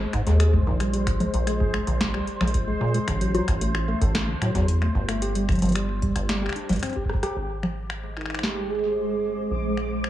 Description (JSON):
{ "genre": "IDM", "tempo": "112 BPM", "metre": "4/4", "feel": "straight", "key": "Ab lydian", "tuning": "A4 = 444 Hz", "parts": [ { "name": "bright tine electric piano", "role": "arpeggios", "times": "0.0-7.4 s", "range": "G2 to A4", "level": "-29 LUFS", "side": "left 1 dB", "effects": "dub echo" }, { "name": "deep acid bass", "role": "bass", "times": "0.0-10.1 s", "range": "G1 to Bb2", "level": "-25 LUFS", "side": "equal", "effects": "none" }, { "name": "bubbling stepped-filter texture", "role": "texture", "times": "0.0-10.1 s", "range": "C5 to D6", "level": "-36 LUFS", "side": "left 1 dB", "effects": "chorus, built-in reverb" }, { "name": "booming analog drum machine", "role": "drums", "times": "0.1-10.1 s", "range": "congas, finger snaps, hi-hat, rim click, snare drum", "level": "-29 LUFS", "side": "left 1 dB", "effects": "analog delay" }, { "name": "electronic kick drum", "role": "drums", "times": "0.1-7.2 s", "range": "none", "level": "-27 LUFS", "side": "equal", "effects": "none" }, { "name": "granular cloud pad", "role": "sustained chords", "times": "8.3-10.1 s", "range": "Ab3 to F5", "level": "-28 LUFS", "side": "right 2 dB", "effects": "built-in reverb" }, { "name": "warbly nostalgic lead", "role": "melody", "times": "8.2-9.2 s", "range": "Eb4 to Ab4", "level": "-29 LUFS", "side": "right 3 dB", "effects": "chorus, analog delay" } ], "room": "moderate spring reverb, RT60 1.7 s, digital ambience", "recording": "echo-heavy mix, small room ambience", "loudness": "-22 LUFS", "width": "side -13 dB against mid", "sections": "0.0-7.4 A section; 7.4-10.1 B section", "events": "drum fill 7.1", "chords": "0.0 Ab; 0.9 N.C.; 3.1 D7/A (rootless); 5.2 G5; 7.4 Ab; 9.5 Bb" }